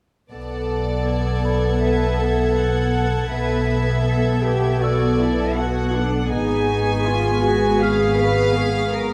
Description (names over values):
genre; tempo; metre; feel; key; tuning
cinematic; 80 BPM; 4/4; straight; unclear; A4 = 440 Hz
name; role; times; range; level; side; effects
rich studio violin section; melody; 0.3-9.1 s; D5 to G#5; -30 LUFS; equal; none
dark symphonic viola section; accompaniment; 0.3-9.1 s; B3 to A4; -24 LUFS; equal; none
rich symphonic double bass section; bass; 0.3-9.1 s; G#1 to B1; -24 LUFS; equal; none
warm symphonic violin section; texture; 0.3-9.1 s; F#5 to B6; -36 LUFS; equal; none
celesta; texture; 1.4-9.1 s; D5 to E#6; -36 LUFS; equal; none
rich studio cello section; bass; 1.8-9.1 s; D4 to B4; -27 LUFS; equal; none
room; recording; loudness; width
moderate scoring stage reverb, RT60 1.6 s; dark, warm production; -20 LUFS; mono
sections
0.3-9.1 A section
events
none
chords
0.3 Bm7; 6.3 G#m